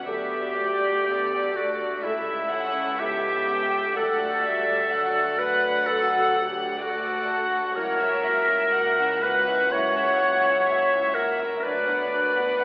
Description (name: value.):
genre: classical, slow romantic movement for symphony orchestra.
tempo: 62 BPM.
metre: 4/4.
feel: rubato.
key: unclear.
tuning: A4 = 440 Hz.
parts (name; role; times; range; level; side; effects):
warm studio violin section; melody; 0.0-12.6 s; D5 to F#5; -33 LUFS; left 1 dB; none.
mellow clarinet; second line; 0.0-12.6 s; E4 to C#5; -25 LUFS; equal; none.
warm studio violin section; second line; 0.0-12.6 s; A4 to G5; -29 LUFS; equal; none.
dark studio viola section; accompaniment; 0.0-12.6 s; F#3 to A4; -35 LUFS; equal; none.
dark studio cello section; bass; 0.0-12.6 s; C#2 to D2; -40 LUFS; equal; none.
rich studio double bass section; bass; 0.0-12.6 s; C#2 to D2; -44 LUFS; equal; none.
clear oboe; second line; 0.1-12.6 s; E4 to C#5; -25 LUFS; equal; none.
dark French horn section; sustained chords; 0.1-12.0 s; F#3 to A4; -35 LUFS; equal; none.
room: wet church reverb, RT60 3.3 s.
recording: recorded in a church or concert hall, telephone sound.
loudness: -21 LUFS.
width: side -23 dB against mid.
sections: 0.0-12.6 A section.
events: none.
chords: 0.1 D; 2.0 A7/C#; 4.0 D; 7.8 F#7/C#; 11.6 Bm/D.